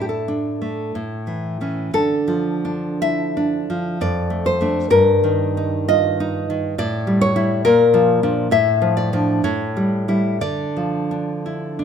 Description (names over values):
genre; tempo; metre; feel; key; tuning
romantic piece for solo classical guitar; 53-70 BPM; 3/4; rubato; D minor; A4 = 441 Hz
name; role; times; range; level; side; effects
nylon-string guitar; solo; 0.0-11.8 s; F2 to E5; -17 LUFS; equal; none
room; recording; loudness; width
moderate recital hall reverb, RT60 1.6 s; close, detailed microphones; -17 LUFS; side -7 dB against mid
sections
0.0-11.8 A section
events
none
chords
0.0 D5/A; 0.9 A; 1.9 Dm; 4.0 Dm/F; 4.9 Eb/G; 6.8 A7; 7.7 Bb; 8.5 Dm/A; 9.4 A7; 10.4 Dm